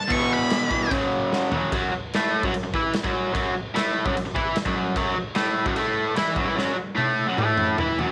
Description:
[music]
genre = garage rock duo or trio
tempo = 148 BPM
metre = 4/4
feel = straight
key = unclear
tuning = A4 = 436 Hz
[part]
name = octave-fuzz lead guitar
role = melody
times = 0.0-0.9 s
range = A5 to C#6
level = -28 LUFS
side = equal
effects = distortion
[part]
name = raw garage guitar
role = riff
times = 0.1-8.1 s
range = E2 to E4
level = -25 LUFS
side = equal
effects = overdrive
[part]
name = raw garage drum kit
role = drums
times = 0.1-8.1 s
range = crash cymbal, kick drum, snare drum, toms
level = -30 LUFS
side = equal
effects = none
[sound]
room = light reverb, small room ambience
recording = none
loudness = -24 LUFS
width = mono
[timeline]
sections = 0.0-1.7 A section; 1.7-8.1 B section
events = lead electric guitar solo 0.0-1.7; drum fill 1.3-1.7, 6.6-8.1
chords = 0.1 E5; 0.9 F#5; 1.7 F#m7

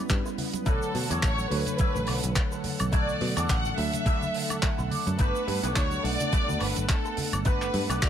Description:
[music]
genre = nu-disco, nu disco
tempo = 106 BPM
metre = 4/4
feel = swing 56% on 16ths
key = B minor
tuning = A4 = 442 Hz
[part]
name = tine electric piano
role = accompaniment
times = 0.0-8.1 s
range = D3 to F#5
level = -34 LUFS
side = equal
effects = medium stereo tremolo
[part]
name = lush unison pad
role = sustained chords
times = 0.0-8.1 s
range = B3 to F#5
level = -39 LUFS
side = equal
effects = chorus, sidechain pumping
[part]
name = picked electric bass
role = bass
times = 0.1-8.1 s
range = G1 to B2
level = -31 LUFS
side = equal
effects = none
[part]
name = damped 70s drum kit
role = drums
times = 0.1-8.1 s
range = handclaps, hi-hat, shaker, woodblock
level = -32 LUFS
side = right 1 dB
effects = none
[part]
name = electronic kick drum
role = drums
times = 0.1-8.1 s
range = none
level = -26 LUFS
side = equal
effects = none
[part]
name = electric guitar with an envelope filter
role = riff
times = 0.3-8.1 s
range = D4 to F#5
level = -35 LUFS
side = left 1 dB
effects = analog chorus
[part]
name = congas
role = percussion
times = 0.4-7.9 s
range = none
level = -38 LUFS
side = right 3 dB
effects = none
[part]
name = warm studio violin section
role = melody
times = 0.7-8.1 s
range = A4 to F#5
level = -32 LUFS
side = right 1 dB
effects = tape echo
[sound]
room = small room ambience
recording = none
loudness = -24 LUFS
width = side -9 dB against mid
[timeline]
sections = 0.0-8.1 A section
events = clean electric guitar fill 4.3-5.2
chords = 0.0 A7 (rootless); 0.7 Bm7; 5.2 Gmaj7

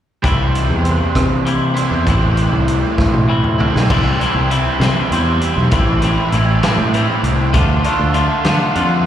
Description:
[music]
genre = indie rock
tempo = 66 BPM (dotted quarters)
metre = 6/8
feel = straight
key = C major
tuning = A4 = 440 Hz
[part]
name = raw garage guitar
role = riff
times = 0.2-9.1 s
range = A2 to F4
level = -19 LUFS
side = right 5 dB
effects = overdrive, analog chorus, analog delay, slapback echo
[part]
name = twangy electric guitar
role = riff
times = 0.2-9.1 s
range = A2 to F4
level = -20 LUFS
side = left 6 dB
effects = slapback echo
[part]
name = picked electric bass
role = bass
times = 0.2-9.0 s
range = A1 to D3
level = -16 LUFS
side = equal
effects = none
[part]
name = loose indie drum kit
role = drums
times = 0.2-8.9 s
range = crash cymbal, hi-hat, kick drum, rim click, snare drum, toms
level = -20 LUFS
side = equal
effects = none
[sound]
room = little or no reverb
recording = live gig heard through the venue's PA, recital hall reverb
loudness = -13 LUFS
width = side -10 dB against mid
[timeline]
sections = 0.2-3.9 A section; 3.9-9.1 B section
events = drum fill 3.0-3.9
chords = 0.2 C; 2.1 Am7; 3.9 C; 5.7 Am7; 7.5 Dm

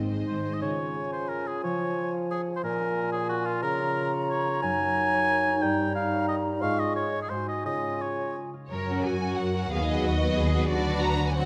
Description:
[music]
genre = classical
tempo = 180 BPM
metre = 3/4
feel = rubato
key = Db major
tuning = A4 = 440 Hz
[part]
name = warm symphonic violin section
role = melody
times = 0.0-0.6, 8.7-11.5 s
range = C#5 to A#5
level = -35 LUFS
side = equal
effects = none
[part]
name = mellow clarinet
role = second line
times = 0.0-8.5 s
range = C4 to Gb4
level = -38 LUFS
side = equal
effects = none
[part]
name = warm symphonic violin section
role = second line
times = 0.0-0.6, 8.9-11.5 s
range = F#4 to C5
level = -37 LUFS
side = equal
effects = none
[part]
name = dark studio viola section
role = accompaniment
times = 0.0-0.6, 8.9-11.5 s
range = F#3 to D4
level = -35 LUFS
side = equal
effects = none
[part]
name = concert harp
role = arpeggios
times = 0.0-11.5 s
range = Gb2 to F#5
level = -36 LUFS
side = equal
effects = none
[part]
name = rich symphonic cello section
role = bass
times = 0.0-0.6, 8.7-11.5 s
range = Ab2 to A#4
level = -36 LUFS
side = equal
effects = none
[part]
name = warm symphonic double bass section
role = bass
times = 0.0-0.6, 8.7-11.5 s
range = Ab1 to F#2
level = -31 LUFS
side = equal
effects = none
[part]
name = warm oboe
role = second line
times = 0.3-8.4 s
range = F4 to Ab5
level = -31 LUFS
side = equal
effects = none
[part]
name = hollow concert flute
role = second line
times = 0.6-8.5 s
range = Ab5 to Db6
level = -37 LUFS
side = equal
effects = none
[part]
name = mellow bassoon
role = accompaniment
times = 0.6-8.5 s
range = Bb2 to Ab3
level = -34 LUFS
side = equal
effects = none
[sound]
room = moderate concert hall reverb, RT60 2.4 s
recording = none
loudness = -27 LUFS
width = mono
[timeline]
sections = 0.6-8.7 A section; 8.7-11.5 B section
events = none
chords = 0.0 Ab; 0.6 Db; 1.6 Db/F; 2.6 Bbm7; 3.6 Bbm/Db; 4.6 Ebm7/Gb; 5.6 Eb7/G; 6.6 Db/Ab; 7.3 Ab7; 7.7 Db; 8.7 F#; 9.7 B/D#; 10.7 Bm/D

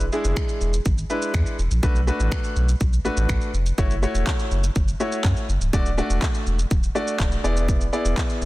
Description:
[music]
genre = dance-pop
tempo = 123 BPM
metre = 4/4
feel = straight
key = unclear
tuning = A4 = 439 Hz
[part]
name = clear concert grand piano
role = accompaniment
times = 0.0-8.5 s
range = G#3 to D5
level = -26 LUFS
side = left 1 dB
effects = sidechain pumping
[part]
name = warm sub bass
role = bass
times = 0.0-8.5 s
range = C#1 to F#2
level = -22 LUFS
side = equal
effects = sidechain pumping
[part]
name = pop drum kit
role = drums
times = 0.0-8.5 s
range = finger snaps, handclaps, kick drum, shaker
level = -24 LUFS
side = equal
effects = soft clipping on snare
[sound]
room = little or no reverb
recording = dense, heavily limited modern master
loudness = -20 LUFS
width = side -18 dB against mid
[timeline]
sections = 0.0-8.5 A section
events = none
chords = 0.0 E7; 1.8 Bm7; 3.8 F#m7; 5.7 D; 7.4 E7

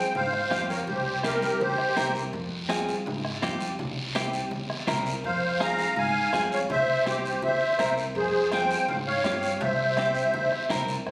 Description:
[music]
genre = latin, cumbia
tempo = 165 BPM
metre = 4/4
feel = straight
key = F harmonic minor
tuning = A4 = 440 Hz
[part]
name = musette accordion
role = melody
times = 0.0-2.1, 5.2-11.1 s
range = G4 to Bb5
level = -24 LUFS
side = equal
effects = none
[part]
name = clean electric guitar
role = accompaniment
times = 0.0-11.0 s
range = C4 to Bb4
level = -31 LUFS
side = equal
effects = none
[part]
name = upright bass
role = bass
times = 0.2-11.1 s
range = C2 to Ab2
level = -35 LUFS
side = equal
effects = none
[part]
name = congas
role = percussion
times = 0.2-11.1 s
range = none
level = -37 LUFS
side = equal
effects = none
[part]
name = guiro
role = percussion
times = 0.2-11.1 s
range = none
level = -37 LUFS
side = equal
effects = none
[part]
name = bombo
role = percussion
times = 0.3-11.1 s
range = none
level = -36 LUFS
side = equal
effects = none
[sound]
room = wet large studio reverb, RT60 1.4 s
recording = recorded on a phone in the room, club reverb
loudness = -24 LUFS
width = side -24 dB against mid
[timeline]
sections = 0.0-11.1 A section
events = none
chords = 0.0 Fm; 0.9 C7; 2.3 Fm; 3.8 C7; 5.2 Fm; 6.7 C7; 8.2 Fm; 9.6 C7

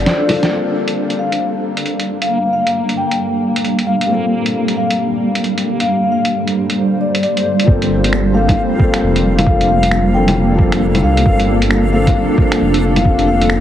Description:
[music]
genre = future garage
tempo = 134 BPM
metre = 4/4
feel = swing 62% on 16ths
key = G minor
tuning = A4 = 440 Hz
[part]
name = vibraphone with soft mallets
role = melody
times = 0.0-13.5 s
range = D5 to G5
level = -20 LUFS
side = left 3 dB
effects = tape echo
[part]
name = felt-muted upright piano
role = accompaniment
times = 0.0-13.6 s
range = F3 to A4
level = -20 LUFS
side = left 3 dB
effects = sidechain pumping, tape echo
[part]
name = granular cloud pad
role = sustained chords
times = 0.0-13.6 s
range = G3 to F5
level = -18 LUFS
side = right 2 dB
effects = built-in reverb, sidechain pumping
[part]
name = dark detuned saw bass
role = bass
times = 0.0-0.1, 7.7-13.6 s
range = F1 to C2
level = -17 LUFS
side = equal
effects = sidechain pumping
[part]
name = lo-fi sampler-style drum kit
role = drums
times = 0.1-13.6 s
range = bongos, finger snaps, hi-hat, snare drum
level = -20 LUFS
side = equal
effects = none
[part]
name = backwards swelling texture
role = texture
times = 1.1-13.6 s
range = Bb3 to F5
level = -25 LUFS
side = equal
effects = built-in reverb
[part]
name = electronic kick drum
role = drums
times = 7.7-13.2 s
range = none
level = -14 LUFS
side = right 1 dB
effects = none
[sound]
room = light reverb, digital ambience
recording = heavily compressed radio sound, multiband compression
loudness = -12 LUFS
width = side -11 dB against mid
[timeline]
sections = 0.5-7.7 A section; 7.7-13.6 B section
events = break 0.1-0.5; drum fill 0.1-0.5; band accent 0.4; filter sweep on ambient pad 0.5-7.7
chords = 0.0 Dm; 0.5 Gm11

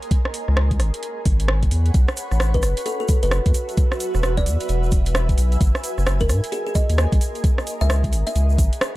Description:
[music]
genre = UK garage, two-step garage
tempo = 131 BPM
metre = 4/4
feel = swing 62% on 16ths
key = unclear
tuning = A4 = 439 Hz
[part]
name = garage drum kit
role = drums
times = 0.0-8.9 s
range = hi-hat, rim click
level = -26 LUFS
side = right 1 dB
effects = overdrive
[part]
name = granular cloud pad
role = texture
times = 0.0-9.0 s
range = F#4 to B5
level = -30 LUFS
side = right 1 dB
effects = built-in reverb, sidechain pumping
[part]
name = electronic kick drum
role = drums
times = 0.1-8.7 s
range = none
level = -19 LUFS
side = equal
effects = overdrive
[part]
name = saturated sub bass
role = bass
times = 0.5-8.7 s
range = E1 to G#2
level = -19 LUFS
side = equal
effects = sidechain pumping
[part]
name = egg shaker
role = percussion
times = 1.9-8.9 s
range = none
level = -37 LUFS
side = right 3 dB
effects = none
[part]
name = kalimba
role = melody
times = 2.5-8.6 s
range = G#4 to E5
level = -28 LUFS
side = equal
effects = digital delay
[sound]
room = little or no reverb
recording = dark, warm production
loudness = -18 LUFS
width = side -18 dB against mid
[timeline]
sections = 0.0-9.0 A section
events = none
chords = 0.1 C#7(no3); 1.9 Bsus2; 3.5 E7; 5.6 G#7; 7.4 C#m7

